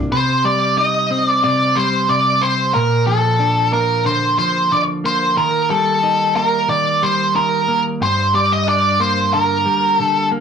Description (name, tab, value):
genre	rock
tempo	91 BPM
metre	4/4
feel	straight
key	C dorian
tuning	A4 = 440 Hz
part	semi-hollow electric guitar	riff	0.0-10.4 s	G2 to F4	-20 LUFS	equal	none
part	octave-fuzz lead guitar	melody	0.1-10.3 s	A4 to Eb5	-15 LUFS	equal	distortion
room	wet small room reverb, RT60 0.5 s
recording	rough rehearsal-room recording, warm saturation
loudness	-14 LUFS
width	side -7 dB against mid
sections	0.1-10.4 A section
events	none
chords	0.1 Cm; 2.8 Bb; 5.4 Eb; 8.0 Gm